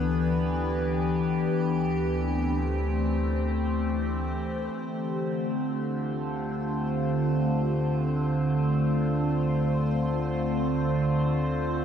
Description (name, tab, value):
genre	ambient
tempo	free time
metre	none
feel	none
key	D dorian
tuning	A4 = 439 Hz
part	evolving wavetable pad	sustained chords	0.0-11.8 s	D3 to C5	-25 LUFS	equal	chorus, built-in reverb, phaser
part	warm sub bass	bass	0.0-11.8 s	D2	-33 LUFS	equal	none
part	pedal harmonium	drone	0.0-11.8 s	D3	-40 LUFS	left 1 dB	none
room	wet cathedral reverb, RT60 4.8 s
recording	dreamy mix soaked in reverb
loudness	-24 LUFS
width	side -8 dB against mid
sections	0.0-4.7 A section; 4.7-11.8 B section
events	fade-in on sub bass 4.7-11.8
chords	0.0 Em7/D; 1.5 Am7/D; 4.7 Dm7